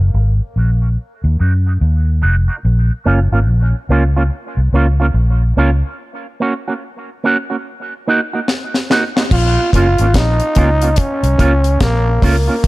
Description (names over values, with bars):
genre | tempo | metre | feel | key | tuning
dub reggae | 72 BPM | 4/4 | swing 62% on 16ths | Bb minor | A4 = 440 Hz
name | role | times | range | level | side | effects
electric guitar with an envelope filter | accompaniment | 0.0-12.5 s | Bb3 to Gb4 | -19 LUFS | right 3 dB | high-pass filter, low-pass filter, dub echo
vintage muted fingered electric bass | bass | 0.0-12.7 s | F1 to Gb2 | -13 LUFS | equal | none
deep reggae drum kit | drums | 8.5-12.7 s | crash cymbal, hi-hat, kick drum, snare drum | -16 LUFS | left 1 dB | none
growling trombone | melody | 9.3-12.7 s | Bb3 to F4 | -18 LUFS | equal | low-pass filter, dub echo
room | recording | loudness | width
small room ambience | none | -12 LUFS | side -19 dB against mid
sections
0.0-9.3 A section; 9.3-12.7 B section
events
break 0.0-9.3; drum fill 8.5-9.3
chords
0.0 Gb; 1.0 Ebm; 2.6 Bbm; 6.0 Gb; 7.6 Ebm; 9.3 Bbm